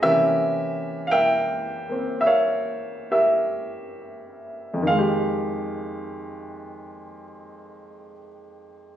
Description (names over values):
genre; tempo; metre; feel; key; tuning
solo jazz; 42-56 BPM; 4/4; swing 68% on 8ths, rubato; F minor; A4 = 442 Hz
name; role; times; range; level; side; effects
warm baby grand piano; solo; 0.0-9.0 s; F2 to G5; -22 LUFS; equal; none
room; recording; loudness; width
light reverb; recorded on a phone in the room, studio reverb, compression; -20 LUFS; side -11 dB against mid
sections
0.0-4.9 A section; 4.9-9.0 B section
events
slowing down 0.0-4.9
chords
0.0 C7b9; 4.9 Fm9